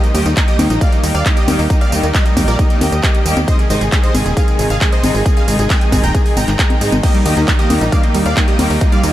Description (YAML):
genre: uplifting trance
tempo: 135 BPM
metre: 4/4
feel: straight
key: Eb major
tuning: A4 = 438 Hz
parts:
  - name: supersaw stab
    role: melody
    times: 0.0-9.1 s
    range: Eb4 to Bb5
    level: -20 LUFS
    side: equal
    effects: sidechain pumping, analog delay
  - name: rich studio string section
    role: sustained chords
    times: 0.0-9.1 s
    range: C3 to G4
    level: -20 LUFS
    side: equal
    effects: vintage 12-bit sampler grit, sidechain pumping
  - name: big-room dance drum kit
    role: drums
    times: 0.0-9.1 s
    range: congas, crash cymbal, handclaps, hi-hat, ride cymbal, tambourine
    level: -20 LUFS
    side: equal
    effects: sidechain pumping on hats, sidechain pumping on perc, sidechain pumping on cymbals
  - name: tight sequencer bass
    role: bass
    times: 0.1-9.1 s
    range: Eb1 to Ab2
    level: -17 LUFS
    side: equal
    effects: sidechain pumping
  - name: electronic kick drum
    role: drums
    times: 0.4-8.9 s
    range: none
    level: -14 LUFS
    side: equal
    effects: none
  - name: analog pluck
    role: arpeggios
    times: 7.0-9.1 s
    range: Eb3 to Bb3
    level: -20 LUFS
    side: right 2 dB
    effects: chorus, sidechain pumping, analog delay
room: light reverb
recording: none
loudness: -11 LUFS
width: side -14 dB against mid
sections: 0.0-9.1 A section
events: none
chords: 0.0 Eb; 3.5 Ab; 7.0 Eb